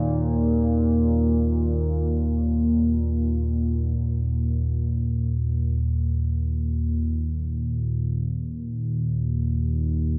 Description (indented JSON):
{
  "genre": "ambient",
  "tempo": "free time",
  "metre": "none",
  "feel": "none",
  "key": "unclear",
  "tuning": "A4 = 440 Hz",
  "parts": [
    { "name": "analog drone", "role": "solo", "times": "0.0-10.2 s", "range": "Eb2 to Bb2", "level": "-24 LUFS", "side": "equal", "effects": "chorus" }
  ],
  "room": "wet huge ambient reverb, RT60 8.4 s",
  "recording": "dark, warm production",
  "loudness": "-24 LUFS",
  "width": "mono",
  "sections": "0.0-4.0 A section; 4.0-10.2 A section",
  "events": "none",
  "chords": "0.0 Eb5"
}